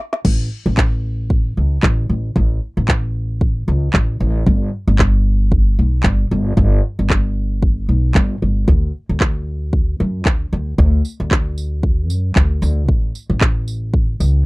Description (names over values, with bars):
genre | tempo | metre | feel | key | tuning
acoustic pop | 114 BPM | 4/4 | swing 55% on 16ths | unclear | A4 = 444 Hz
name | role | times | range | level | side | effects
organic electronic drum kit | drums | 0.1-14.3 s | crash cymbal, handclaps, kick drum, snare drum, tambourine | -16 LUFS | equal | none
upright bass | bass | 0.2-14.4 s | G1 to F#2 | -16 LUFS | equal | none
room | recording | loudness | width
little or no reverb | dry, close 1970s-style studio recording | -15 LUFS | side -23 dB against mid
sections
0.3-14.5 A section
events
drum fill 0.0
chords
none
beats
| 0.25 0.78 1.30 1.83 | 2.36 2.88 3.41 3.94 | 4.46 4.99 5.52 6.04 | 6.57 7.10 7.62 8.15 | 8.68 9.20 9.73 10.25 | 10.78 11.31 11.83 12.36 | 12.89 13.41 13.94